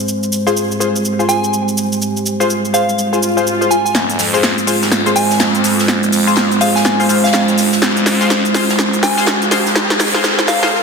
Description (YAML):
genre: bass house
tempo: 124 BPM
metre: 4/4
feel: swing 61% on 16ths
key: F minor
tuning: A4 = 440 Hz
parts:
  - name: dark analog pad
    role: sustained chords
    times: 0.0-10.7 s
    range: Ab3 to C5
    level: -18 LUFS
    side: right 2 dB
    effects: lush chorus
  - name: big-room dance drum kit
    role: drums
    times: 0.1-10.7 s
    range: hi-hat, shaker, snare drum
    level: -17 LUFS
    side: equal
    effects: high-pass filter on hats, high-pass filter on cymbals, high-pass filter on perc, high-pass filter on snare, high-pass filter on room
  - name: band-passed chord stab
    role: stabs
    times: 0.5-10.7 s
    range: F4 to C5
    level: -19 LUFS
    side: left 4 dB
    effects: chorus, phaser, dub echo
  - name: soft synth bell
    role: melody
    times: 1.3-10.6 s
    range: F5 to Ab5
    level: -20 LUFS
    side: right 1 dB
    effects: chorus, dub echo
  - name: swell and riser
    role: sound effects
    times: 3.1-10.8 s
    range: none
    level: -23 LUFS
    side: equal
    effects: none
  - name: phased detuned saw bass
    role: bass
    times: 3.9-10.7 s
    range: Eb1 to F2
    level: -22 LUFS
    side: equal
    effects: phaser, tube saturation, high-pass filter
  - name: unplugged drum kit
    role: drums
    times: 3.9-10.7 s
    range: hi-hat, ride cymbal, snare drum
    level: -22 LUFS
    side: left 2 dB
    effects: high-pass filter on cymbals, high-pass filter on hats, high-pass filter on snare, high-pass filter on room
room: moderate lush hall reverb, RT60 2.0 s, digital ambience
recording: dense, heavily limited modern master, high-pass filter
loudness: -12 LUFS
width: side -5 dB against mid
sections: 0.0-3.9 A section; 3.9-10.8 B section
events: swell 3.1-3.9; build-up 3.9-10.8; drum fill 3.9-10.7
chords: 0.0 Fm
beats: | 0.08 0.56 1.04 1.53 | 2.01 2.50 2.98 3.46 | 3.95 4.43 4.92 5.40 | 5.88 6.37 6.85 7.33 | 7.82 8.30 8.79 9.27 | 9.75 10.24 10.72